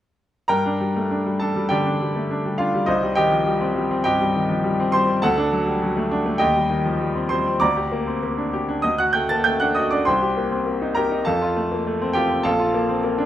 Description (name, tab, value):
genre	classical, virtuoso piano study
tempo	101 BPM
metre	4/4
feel	rubato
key	G minor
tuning	A4 = 440 Hz
part	bright grand piano	solo	0.5-13.3 s	Bb1 to A6	-18 LUFS	equal	none
room	moderate large studio reverb, RT60 1.2 s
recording	none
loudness	-19 LUFS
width	side -12 dB against mid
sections	0.5-13.3 A section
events	none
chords	0.5 Gm; 2.9 Cm; 5.2 D; 6.4 Cm/Eb; 7.6 Gm/D; 8.8 D; 10.1 Cm7; 11.3 F; 12.5 Bbmaj7(no3)